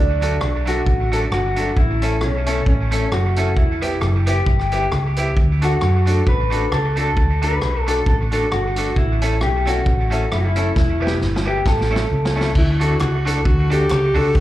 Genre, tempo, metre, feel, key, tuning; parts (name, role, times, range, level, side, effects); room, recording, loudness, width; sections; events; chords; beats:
ska; 134 BPM; 4/4; swing 56% on 8ths; D major; A4 = 440 Hz
mellow electric guitar; melody; 0.0-12.3 s; C#4 to B4; -23 LUFS; left 1 dB; wide subtle chorus, slapback echo
hollow-body short-scale fingered electric bass; bass; 0.0-14.4 s; E1 to F#2; -20 LUFS; equal
electric guitar at the edge of break-up; accompaniment; 0.2-14.3 s; F#3 to A4; -27 LUFS; right 4 dB; tape echo, slapback echo
warm upright piano; stabs; 0.2-14.3 s; B3 to A4; -26 LUFS; left 2 dB; slapback echo
vintage drum kit; drums; 0.2-14.4 s; crash cymbal, hi-hat, kick drum, rim click, snare drum; -22 LUFS; equal
clear alto saxophone; melody; 12.6-14.4 s; E4 to A4; -21 LUFS; left 1 dB; tape echo, slapback echo
group handclap; percussion; 13.0-14.0 s; -38 LUFS; right 2 dB
light reverb; live gig heard through the venue's PA, club reverb; -16 LUFS; side -14 dB against mid
0.0-12.6 A section; 12.6-14.4 B section
drum fill 10.8-12.6; alto saxophone solo 12.6-14.4
0.0 D; 1.8 A; 3.6 Em; 5.4 D; 9.0 A; 10.8 Em; 11.7 A; 12.6 D
0.42 0.87 1.32 | 1.77 2.22 2.67 3.12 | 3.57 4.02 4.47 4.92 | 5.37 5.82 6.27 6.72 | 7.17 7.61 8.06 8.51 | 8.96 9.41 9.86 10.31 | 10.76 11.21 11.66 12.11 | 12.55 13.00 13.45 13.90 | 14.35